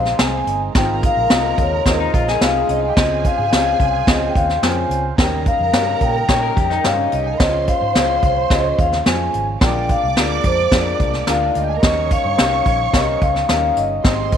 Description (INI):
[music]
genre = uptempo 1960s-style soul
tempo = 108 BPM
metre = 4/4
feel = straight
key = unclear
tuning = A4 = 440 Hz
[part]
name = vibraphone with soft mallets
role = melody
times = 0.0-14.4 s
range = C5 to Ab5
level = -19 LUFS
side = left 2 dB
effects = none
[part]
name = warm studio string section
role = second line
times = 0.0-14.4 s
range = Ab3 to D6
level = -26 LUFS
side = right 10 dB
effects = none
[part]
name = dark upright piano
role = accompaniment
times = 0.0-14.4 s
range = C4 to Eb5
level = -25 LUFS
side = left 10 dB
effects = none
[part]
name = percussive tonewheel organ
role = sustained chords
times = 0.0-14.4 s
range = Db3 to C5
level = -30 LUFS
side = right 13 dB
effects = overdrive, wide subtle chorus
[part]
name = vintage muted fingered electric bass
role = bass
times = 0.0-14.4 s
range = G1 to Bb2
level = -24 LUFS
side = right 1 dB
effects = none
[part]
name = vintage brush drum kit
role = drums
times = 0.1-14.4 s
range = hi-hat, kick drum, snare drum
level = -18 LUFS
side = right 1 dB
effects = none
[part]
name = electric guitar through a small old amp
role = riff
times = 2.0-2.9, 6.3-7.4 s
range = Eb4 to Db5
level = -24 LUFS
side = left 12 dB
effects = none
[sound]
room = light reverb, small room ambience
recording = 1960s-style stereo with parts hard left and right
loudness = -14 LUFS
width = side -8 dB against mid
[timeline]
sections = 0.0-14.4 A section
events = none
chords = 0.0 Abmaj7; 0.8 Fm7/Ab; 3.0 Dbmaj7; 5.2 Eb7; 7.4 Dbmaj7; 9.6 Bb7; 11.8 Eb7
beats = 0.20 | 0.75 1.31 1.86 2.42 | 2.97 3.52 4.08 4.63 | 5.18 5.74 6.29 6.85 | 7.40 7.95 8.51 9.06 | 9.62 10.17 10.72 11.28 | 11.83 12.39 12.94 13.49 | 14.05